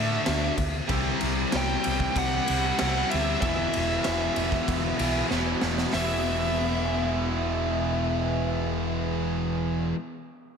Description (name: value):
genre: quiet-loud alternative rock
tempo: 95 BPM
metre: 4/4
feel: straight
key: unclear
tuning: A4 = 443 Hz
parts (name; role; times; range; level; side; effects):
- bluesy overdriven lead guitar; melody; 0.0-9.2 s; E5 to G5; -30 LUFS; equal; distortion, slapback echo
- biting overdriven guitar; riff; 0.0-10.0 s; E2 to D4; -32 LUFS; right 12 dB; none
- crunchy overdriven guitar; riff; 0.0-10.0 s; E2 to D4; -31 LUFS; left 11 dB; none
- high-gain distorted guitar; riff; 0.0-10.0 s; C3 to F#4; -33 LUFS; right 1 dB; distortion
- fingered electric bass; bass; 0.0-9.9 s; E1 to A2; -31 LUFS; equal; none
- raw garage drum kit; drums; 0.3-6.1 s; hi-hat, kick drum, ride cymbal, snare drum; -30 LUFS; equal; none
room: moderate lush hall reverb, RT60 2.0 s, studio reverb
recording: big arena sound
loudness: -24 LUFS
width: side -6 dB against mid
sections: 0.0-5.9 A section; 5.9-8.5 B section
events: drum fill 5.3-5.9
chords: 0.0 D; 0.9 C; 3.4 E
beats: 0.26 | 0.89 1.52 2.15 2.78 | 3.41 4.04 4.67 5.30 | 5.93 6.56 7.19 7.82